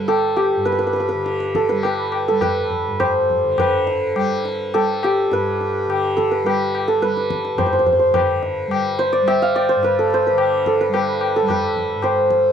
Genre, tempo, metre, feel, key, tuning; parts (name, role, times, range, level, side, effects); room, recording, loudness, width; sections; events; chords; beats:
indian classical, Hindustani; 105 BPM; 4/4; uneven beats; G raga khamaj; A4 = 438 Hz
santur; melody; 0.0-12.5 s; G4 to F5; -17 LUFS; right 1 dB
tanpura; drone; 0.0-12.5 s; G2 to G3; -28 LUFS; right 2 dB
tabla; percussion; 0.1-12.5 s; -24 LUFS; left 7 dB
light reverb; dry, close 1970s-style studio recording; -16 LUFS; side -8 dB against mid
0.0-3.6 A section; 3.6-12.5 B section
speeding up 0.0-12.5
0.08 0.67 | 1.26 1.85 2.43 3.01 | 3.59 4.17 4.74 5.32 | 5.89 6.46 7.03 7.59 | 8.15 8.71 9.27 9.83 | 10.39 10.94 11.49 12.04